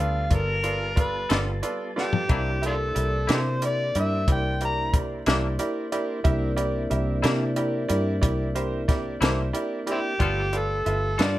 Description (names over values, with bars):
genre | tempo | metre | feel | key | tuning
slow blues | 61 BPM (dotted quarters) | 12/8 | straight | unclear | A4 = 436 Hz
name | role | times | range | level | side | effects
overdriven harmonica | melody | 0.0-11.4 s | C4 to Bb5 | -27 LUFS | equal | plate reverb
bright upright piano | accompaniment | 0.0-11.4 s | E4 to E5 | -30 LUFS | right 2 dB | none
mellow tonewheel organ | sustained chords | 0.0-11.4 s | G3 to A5 | -34 LUFS | equal | slow rotary speaker
vintage muted fingered electric bass | bass | 0.0-11.4 s | G1 to C3 | -27 LUFS | equal | none
compact cocktail drum kit | drums | 0.3-11.3 s | hi-hat, kick drum, snare drum, toms | -24 LUFS | equal | none
twangy electric guitar | accompaniment | 1.3-11.4 s | C3 to A4 | -29 LUFS | left 4 dB | tremolo
room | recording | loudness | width
light reverb | none | -22 LUFS | side -15 dB against mid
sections
0.0-11.4 A section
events
drum fill 2.0-2.3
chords
0.0 G9; 2.3 C9; 10.2 G9